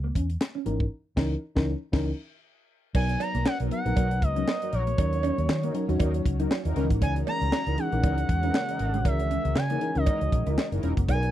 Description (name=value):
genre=early-eighties boogie funk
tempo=118 BPM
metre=4/4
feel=swing 56% on 16ths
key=C# dorian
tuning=A4 = 440 Hz
part: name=mellow electric guitar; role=riff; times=0.0-11.3 s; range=G#3 to E4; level=-35 LUFS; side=equal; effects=analog chorus
part: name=vintage muted fingered electric bass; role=bass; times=0.0-11.3 s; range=E1 to D#3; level=-28 LUFS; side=equal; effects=none
part: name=tight funk drum kit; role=drums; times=0.2-11.3 s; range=crash cymbal, handclaps, hi-hat, kick drum, snare drum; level=-27 LUFS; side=equal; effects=none
part: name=mellow FM electric piano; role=accompaniment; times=0.7-11.3 s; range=D#3 to A#4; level=-31 LUFS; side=left 1 dB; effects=chorus
part: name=lush unison pad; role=sustained chords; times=3.2-11.3 s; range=C#3 to A#4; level=-37 LUFS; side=left 1 dB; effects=chorus
part: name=expressive portamento lead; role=melody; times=3.0-11.3 s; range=C#5 to A#5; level=-31 LUFS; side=equal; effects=chorus
part: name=cowbell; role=percussion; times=3.0-11.2 s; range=none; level=-36 LUFS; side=right 18 dB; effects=none
part: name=mellow synth brass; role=second line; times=3.6-10.9 s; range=E3 to A#4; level=-35 LUFS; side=left 1 dB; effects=chorus
room=little or no reverb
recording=dry, close 1970s-style studio recording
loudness=-24 LUFS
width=side -12 dB against mid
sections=0.0-2.9 A section; 2.9-11.3 B section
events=band accent 0.9-2.9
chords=0.0 C#m69; 2.9 Bmaj7; 5.0 D#m7; 6.8 C#m69